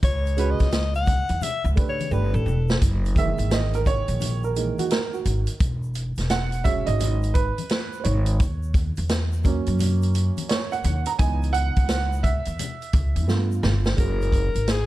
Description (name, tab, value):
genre	hip hop, jazz-hop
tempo	86 BPM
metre	4/4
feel	swing 65% on 16ths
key	unclear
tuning	A4 = 440 Hz
part	breathy alto saxophone	melody	0.0-2.8, 14.0-14.9 s	G#4 to F#5	-28 LUFS	left 4 dB	none
part	upright bass	bass	0.0-14.9 s	E1 to C#3	-23 LUFS	equal	none
part	vintage drum kit	drums	0.0-14.9 s	hi-hat, kick drum, snare drum	-24 LUFS	equal	none
part	egg shaker and congas	percussion	0.0-14.9 s	none	-36 LUFS	left 5 dB	none
part	dark upright piano	accompaniment	0.4-14.5 s	D#3 to A#5	-28 LUFS	right 6 dB	none
room	little or no reverb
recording	none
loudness	-20 LUFS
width	side -16 dB against mid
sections	0.0-2.8 A section; 2.8-14.0 A section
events	alto saxophone solo 0.0-2.8; drum fill 2.1-2.8, 13.3-14.0; upright piano solo 2.8-14.0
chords	0.0 C#7(no3); 2.1 Gadd9; 2.8 F#13; 5.6 E6; 8.4 D#m7; 11.2 C#m9; 13.3 G9; 14.0 F#add9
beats	| 0.03 0.73 1.42 2.12 | 2.82 3.52 4.21 4.91 | 5.61 6.31 7.01 7.70 | 8.40 9.10 9.80 10.49 | 11.19 11.89 12.59 13.29 | 13.98 14.68